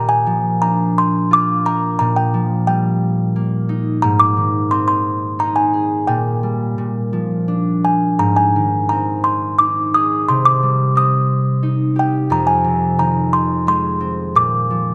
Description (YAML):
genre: children's music, lullaby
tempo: 88 BPM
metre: 3/4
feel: rubato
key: unclear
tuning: A4 = 440 Hz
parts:
  - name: music box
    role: melody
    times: 0.0-14.9 s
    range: G5 to Eb6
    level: -19 LUFS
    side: equal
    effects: none
  - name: concert harp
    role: accompaniment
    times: 0.0-14.9 s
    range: F2 to Bb4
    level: -20 LUFS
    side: equal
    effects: none
room: moderate concert hall reverb, RT60 2.1 s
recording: none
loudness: -17 LUFS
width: mono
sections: 0.0-14.9 A section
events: none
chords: 0.0 Bb; 2.0 Ebadd9/Bb; 4.0 Ab; 6.1 Gm/Bb; 6.8 Bb; 8.2 Ab; 10.3 Cm; 12.3 Fm7; 14.4 Bb